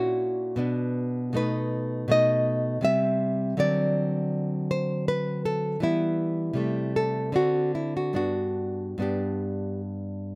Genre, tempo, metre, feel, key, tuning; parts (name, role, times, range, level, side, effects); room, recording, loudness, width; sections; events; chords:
classical, baroque-style dance for nylon-string guitar; 79 BPM; 3/4; uneven beats, rubato; G major; A4 = 439 Hz
nylon-string guitar; solo; 0.0-10.4 s; G2 to E5; -24 LUFS; equal
little or no reverb; recorded outdoors, with no room sound; -24 LUFS; side -29 dB against mid
0.0-10.4 A section
0.0 F#7/A#; 0.6 Bm; 1.4 B7; 2.9 C; 3.6 D7; 5.8 Em; 6.6 Am7/C; 7.4 D7; 8.2 G